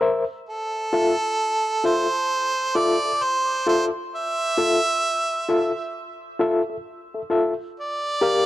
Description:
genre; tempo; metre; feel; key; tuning
reggae; 66 BPM; 4/4; swing 65% on 16ths; F major; A4 = 440 Hz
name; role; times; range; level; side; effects
overdriven reed electric piano; stabs; 0.0-8.4 s; F4 to F5; -22 LUFS; left 2 dB; medium tremolo
clear harmonica; melody; 0.5-8.5 s; A4 to E5; -23 LUFS; right 2 dB; dub echo
room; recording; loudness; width
small room reverb; dry, close 1970s-style studio recording; -20 LUFS; side -15 dB against mid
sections
0.5-8.5 A section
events
none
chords
0.5 Fmaj7; 7.8 Gm7

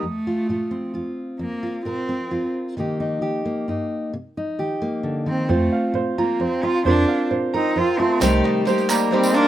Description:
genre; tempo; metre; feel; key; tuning
indie folk with a building arrangement; 132 BPM; 3/4; straight; F mixolydian; A4 = 438 Hz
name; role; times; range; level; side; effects
rich cello; melody; 0.0-2.5, 5.3-9.5 s; A3 to F4; -23 LUFS; right 1 dB; none
fingerpicked steel-string acoustic guitar; accompaniment; 0.0-8.2 s; F2 to Bb4; -23 LUFS; equal; none
picked steel-string acoustic guitar; accompaniment; 0.0, 8.2-9.5 s; C3 to G4; -21 LUFS; left 5 dB; none
clear upright piano; arpeggios; 0.0, 5.5-9.5 s; C5 to C6; -24 LUFS; right 8 dB; none
sub bass with octave; bass; 5.5-8.4 s; C2 to F2; -22 LUFS; right 1 dB; none
brilliant trombone; second line; 7.5-9.5 s; Eb3 to C4; -25 LUFS; right 1 dB; none
group handclap; percussion; 8.2-9.4 s; none; -31 LUFS; right 4 dB; none
tambourine; percussion; 8.2-9.3 s; none; -30 LUFS; right 4 dB; none
room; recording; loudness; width
light reverb; rough home demo mix; -20 LUFS; side -12 dB against mid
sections
0.0-5.5 A section; 5.5-9.5 B section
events
build-up 5.5-9.5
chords
0.0 Fsus4; 2.8 Cm7; 5.5 Fsus4; 8.2 Cm7

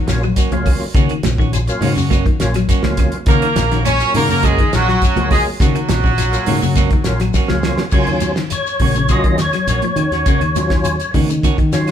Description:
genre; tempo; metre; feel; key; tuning
afrobeat; 103 BPM; 4/4; straight; Eb minor; A4 = 440 Hz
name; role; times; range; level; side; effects
brilliant bass trombone; second line; 0.0-0.5 s; Gb3; -36 LUFS; left 6 dB; none
semi-hollow electric guitar; arpeggios; 0.0-11.9 s; Db3 to Gb3; -22 LUFS; left 7 dB; none
percussive tonewheel organ; accompaniment; 0.1-11.9 s; Gb3 to Eb5; -21 LUFS; left 1 dB; slow rotary speaker, overdrive, chorus vibrato
clean electric guitar; stabs; 0.1-11.8 s; Bb3 to Gb4; -25 LUFS; right 6 dB; none
modern bright fingered electric bass; bass; 0.1-11.9 s; Bb1 to Eb3; -20 LUFS; equal; none
damped 70s drum kit; drums; 0.1-11.9 s; crash cymbal, hi-hat, kick drum, snare drum; -18 LUFS; equal; none
shekere; percussion; 0.1-11.9 s; none; -27 LUFS; left 6 dB; none
claves; percussion; 0.2-11.9 s; none; -36 LUFS; right 8 dB; none
congas; percussion; 0.5-11.6 s; none; -26 LUFS; right 9 dB; none
warm horn section; melody; 3.3-7.3 s; Gb3 to Db5; -18 LUFS; right 1 dB; none
bright trumpet; second line; 3.3-7.3 s; Gb3 to Db4; -26 LUFS; right 5 dB; none
room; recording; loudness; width
moderate large studio reverb, RT60 1.1 s; band playing live in one room; -13 LUFS; side -9 dB against mid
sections
0.0-7.9 A section; 7.9-11.9 B section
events
drum fill 7.3-7.9; tonewheel organ solo 7.9-11.9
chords
0.0 Ebm7

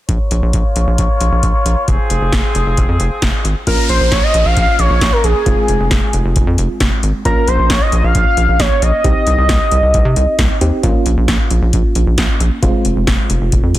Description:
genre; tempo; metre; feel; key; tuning
synth-pop; 134 BPM; 4/4; straight; Bb dorian; A4 = 441 Hz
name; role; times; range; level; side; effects
clear woodwind section; sustained chords; 0.1-3.7 s; F3 to Db5; -20 LUFS; left 2 dB; low-pass filter
rubbery square bass; bass; 0.1-13.8 s; F1 to C3; -15 LUFS; equal; none
electro analog drum machine; drums; 0.1-13.8 s; crash cymbal, hi-hat, kick drum, snare drum; -16 LUFS; equal; none
octave-doubled lead; melody; 3.7-10.6 s; Ab4 to F5; -16 LUFS; equal; chorus, tape echo
FM electric piano with auto-pan; accompaniment; 3.7-13.8 s; Ab3 to G4; -22 LUFS; right 2 dB; none
downlifter; sound effects; 3.7-7.3 s; none; -25 LUFS; equal; none
room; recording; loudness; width
light reverb; dense, heavily limited modern master; -11 LUFS; side -14 dB against mid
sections
0.1-3.7 A section; 3.7-13.8 B section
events
filter sweep on woodwind section 0.1-3.7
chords
0.1 Bbm; 1.9 Fm; 3.7 Bbm; 5.5 Fm; 7.3 Bbm; 9.0 Cm; 10.8 Bbm; 12.6 Fm

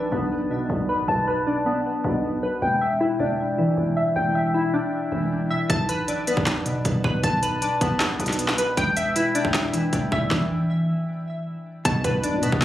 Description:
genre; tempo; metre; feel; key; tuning
hip hop, trap; 156 BPM; 4/4; half-time; E minor; A4 = 440 Hz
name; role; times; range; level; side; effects
glassy digital keys; arpeggios; 0.0-12.6 s; B2 to A5; -22 LUFS; left 1 dB; chorus, phaser, low-pass filter, digital delay
growling 808-style bass; bass; 0.0-12.6 s; E1 to B2; -28 LUFS; equal; none
trap drum kit; drums; 5.7-12.6 s; handclaps, hi-hat, kick drum, snare drum; -25 LUFS; equal; none
mellow electric guitar; accompaniment; 11.9-12.6 s; B2; -26 LUFS; left 1 dB; none
impact; sound effects; 12.2-12.6 s; none; -38 LUFS; right 1 dB; none
room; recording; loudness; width
light reverb, digital ambience; recorded on a phone in the room, club reverb; -21 LUFS; side -13 dB against mid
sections
0.0-11.9 A section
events
filter sweep on synth keys 0.0-5.7; stop 10.3-11.9; impact 11.9-12.6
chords
0.0 Bm7; 2.6 Em7; 5.7 Bm7; 8.8 Em7; 11.9 Bm7

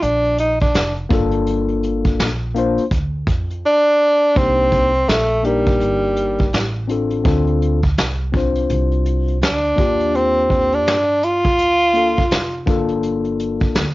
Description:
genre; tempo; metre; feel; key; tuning
hip hop, jazz-hop; 83 BPM; 4/4; swing 61% on 16ths; G minor; A4 = 440 Hz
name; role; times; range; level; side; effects
breathy tenor saxophone; melody; 0.0-12.7 s; G3 to F4; -16 LUFS; right 1 dB; cassette tape
upright bass; bass; 0.0-13.9 s; F1 to G2; -22 LUFS; right 1 dB; none
vintage brush drum kit; drums; 0.0-13.9 s; hi-hat, kick drum, snare drum; -19 LUFS; equal; cassette tape
mellow tine electric piano; accompaniment; 1.1-13.9 s; Bb3 to C5; -20 LUFS; left 4 dB; cassette tape
room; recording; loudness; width
moderate studio reverb, RT60 0.5 s; home recording on cassette, nothing above 7.5 kHz; -15 LUFS; side -18 dB against mid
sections
0.0-4.4 A section; 4.4-13.9 B section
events
tenor saxophone solo 0.0-4.4; silent gap 3.6-4.4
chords
0.0 Fsus4; 1.1 Gm7; 4.4 Cm9; 6.5 F69/A; 7.3 Dm7; 9.8 Ebmaj9; 12.7 Gm7

